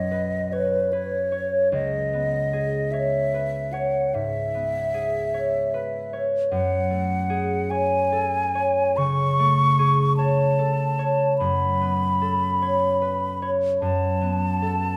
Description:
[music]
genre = classical, impressionist duo for flute and harp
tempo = 50 BPM (dotted quarters)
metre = 12/8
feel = rubato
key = F# minor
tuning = A4 = 440 Hz
[part]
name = mellow hollow silver concert flute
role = melody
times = 0.0-15.0 s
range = B4 to C#6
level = -27 LUFS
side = equal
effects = none
[part]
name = concert harp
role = accompaniment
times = 0.0-15.0 s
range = B1 to C#5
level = -25 LUFS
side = equal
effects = none
[sound]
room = wet recital hall reverb, RT60 1.5 s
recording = none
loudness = -23 LUFS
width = mono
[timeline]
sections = 0.0-15.0 A section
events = none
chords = 0.0 Badd9; 1.7 C#m9; 6.5 F#madd9; 11.4 A69/F#

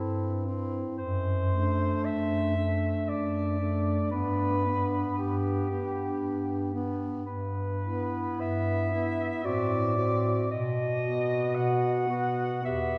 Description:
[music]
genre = classical, lyrical piece for single-reed quartet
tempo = 57 BPM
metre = 3/4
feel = rubato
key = G major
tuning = A4 = 438 Hz
[part]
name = mellow soprano saxophone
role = melody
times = 0.0-13.0 s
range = G4 to F#5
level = -34 LUFS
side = equal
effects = none
[part]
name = mellow clarinet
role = second line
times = 0.0-13.0 s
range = D4 to G4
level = -36 LUFS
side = equal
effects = none
[part]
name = clear tenor saxophone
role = accompaniment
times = 0.0-13.0 s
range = A3 to C4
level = -38 LUFS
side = equal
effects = none
[part]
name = warm bass clarinet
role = bass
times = 0.0-13.0 s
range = E2 to B2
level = -33 LUFS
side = equal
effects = none
[sound]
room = wet cathedral reverb, RT60 4.4 s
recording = recorded in a church or concert hall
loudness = -29 LUFS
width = mono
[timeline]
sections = 0.0-13.0 A section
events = none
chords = 0.0 Am7/G; 1.0 D7/F#; 4.1 G; 9.5 F#dim/A; 10.5 B

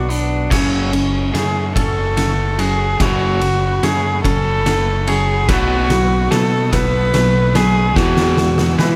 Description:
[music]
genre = post-rock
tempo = 48 BPM (dotted quarters)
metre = 6/8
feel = straight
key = F# minor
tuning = A4 = 445 Hz
[part]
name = warm cello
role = melody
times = 0.0-9.0 s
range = E3 to B4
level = -21 LUFS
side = equal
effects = analog delay
[part]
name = rich studio string section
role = sustained chords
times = 0.0-9.0 s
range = A3 to E6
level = -36 LUFS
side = equal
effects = none
[part]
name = twangy electric guitar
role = arpeggios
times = 0.0-9.0 s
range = E2 to D4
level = -31 LUFS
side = equal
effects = none
[part]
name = twangy electric guitar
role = arpeggios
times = 0.0-9.0 s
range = F#4 to D5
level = -33 LUFS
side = equal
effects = analog delay
[part]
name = growling fingered electric bass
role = bass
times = 0.0-9.0 s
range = F#1 to E3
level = -22 LUFS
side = equal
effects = overdrive
[part]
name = oversized low-tuned drum kit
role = drums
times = 0.1-9.0 s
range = crash cymbal, hi-hat, kick drum, ride cymbal, snare drum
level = -23 LUFS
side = equal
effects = none
[part]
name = overdriven electric guitar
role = riff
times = 0.5-9.0 s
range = E2 to B3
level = -24 LUFS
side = equal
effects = none
[part]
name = overdriven semi-hollow guitar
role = riff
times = 5.5-9.0 s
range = B2 to B3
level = -26 LUFS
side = equal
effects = none
[sound]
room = moderate studio reverb, RT60 0.6 s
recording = none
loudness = -16 LUFS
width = mono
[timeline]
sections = 0.5-9.0 A section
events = build-up 0.5-9.0; drum fill 0.5-9.0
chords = 0.0 Bm; 0.5 F#m; 5.5 B7; 8.0 Eadd9

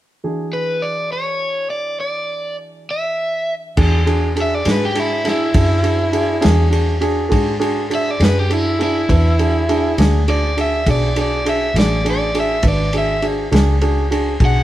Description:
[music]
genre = slow blues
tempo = 68 BPM (dotted quarters)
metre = 12/8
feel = straight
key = E mixolydian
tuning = A4 = 440 Hz
[part]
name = dark grand piano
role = accompaniment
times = 0.2-14.6 s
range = E3 to B4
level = -20 LUFS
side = right 1 dB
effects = none
[part]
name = overdriven electric guitar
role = melody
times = 0.5-14.6 s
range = E4 to F#5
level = -20 LUFS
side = equal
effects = none
[part]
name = vintage muted fingered electric bass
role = bass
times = 3.8-14.6 s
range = G#1 to G#2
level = -18 LUFS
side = equal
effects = none
[part]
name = warm soul drum kit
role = drums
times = 3.8-14.5 s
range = crash cymbal, kick drum, ride cymbal, snare drum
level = -21 LUFS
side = equal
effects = none
[sound]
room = moderate stone room reverb, RT60 1.3 s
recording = band playing live in one room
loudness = -15 LUFS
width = side -13 dB against mid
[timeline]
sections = 0.2-3.8 A section; 3.8-14.6 B section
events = overdriven electric guitar solo 3.8-14.6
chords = 0.2 E7; 3.8 E9

